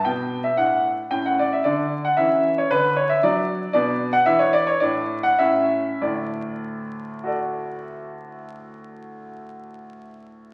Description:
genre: classical-period piano sonatina.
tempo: 95-115 BPM.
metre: 2/4.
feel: straight.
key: D major.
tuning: A4 = 440 Hz.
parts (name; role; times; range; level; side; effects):
clear concert grand piano; solo; 0.0-10.5 s; D2 to G5; -23 LUFS; equal; none.
room: wet recital hall reverb, RT60 1.4 s.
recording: very old 78 rpm record, vinyl crackle.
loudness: -21 LUFS.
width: mono.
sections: 0.0-6.0 A section; 6.0-8.5 B section.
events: slowing down 3.2-6.0.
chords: 0.0 G6; 0.6 D/A; 1.1 A; 1.6 N.C.; 2.2 C#m/E; 2.7 N.C.; 3.2 D/F#; 3.7 Bm; 4.3 Dsus2/E; 4.8 D5/A; 5.4 A; 6.0 D.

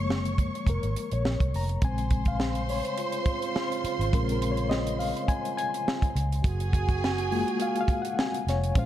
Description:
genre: lush 1970s-style soul.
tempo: 104 BPM.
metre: 4/4.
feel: swing 54% on 16ths.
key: unclear.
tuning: A4 = 440 Hz.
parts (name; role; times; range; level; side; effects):
warm symphonic violin section; second line; 0.0-8.9 s; F4 to Db6; -34 LUFS; right 1 dB; analog delay.
bright reed electric piano; accompaniment; 0.0-8.9 s; Db3 to Bb5; -31 LUFS; left 5 dB; fast tremolo.
vintage muted fingered electric bass; bass; 0.0-8.9 s; F1 to Db2; -29 LUFS; right 1 dB; none.
tight funk drum kit; drums; 0.1-8.9 s; hi-hat, kick drum, snare drum; -28 LUFS; right 1 dB; none.
dark trombone section; stabs; 3.0-8.9 s; Db3 to Gb4; -34 LUFS; right 10 dB; none.
room: light reverb, studio ambience.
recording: dark, warm production.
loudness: -25 LUFS.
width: side -12 dB against mid.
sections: 0.0-8.9 A section.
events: reed electric piano solo 0.0-8.9.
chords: 0.0 Gbmaj9; 1.8 Bbm9; 6.4 Gbmaj9.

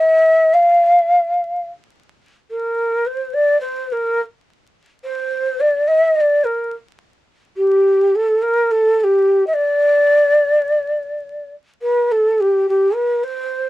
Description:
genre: turkish.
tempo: free time.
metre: none.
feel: none.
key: D makam ussak.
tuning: A4 = 440 Hz.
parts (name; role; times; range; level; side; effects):
breathy mellow ney; solo; 0.0-13.7 s; G4 to F5; -14 LUFS; equal; none.
room: light reverb.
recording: vinyl crackle.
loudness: -14 LUFS.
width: side -16 dB against mid.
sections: 0.0-12.1 A section; 12.1-13.7 B section.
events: none.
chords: none.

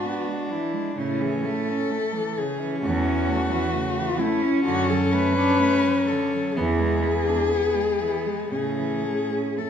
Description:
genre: classical, lyrical piece for cello ensemble.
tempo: 56-67 BPM.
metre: 4/4.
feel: rubato.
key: A major.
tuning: A4 = 440 Hz.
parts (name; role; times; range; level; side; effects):
dark cello; melody; 0.0-9.7 s; E4 to B4; -26 LUFS; left 5 dB; none.
warm cello; second line; 0.0-9.7 s; C#3 to D4; -29 LUFS; right 7 dB; none.
warm cello; accompaniment; 0.0-9.7 s; G#3 to D4; -26 LUFS; left 2 dB; none.
warm cello; bass; 1.0-9.4 s; E2 to A2; -28 LUFS; right 3 dB; none.
room: wet recital hall reverb, RT60 1.6 s.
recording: minimal, uncompressed stereo recording.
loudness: -21 LUFS.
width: side -8 dB against mid.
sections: 0.0-9.7 A section.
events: none.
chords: 0.0 E7/G#; 1.0 A; 4.7 D/F#; 6.6 E; 8.5 A.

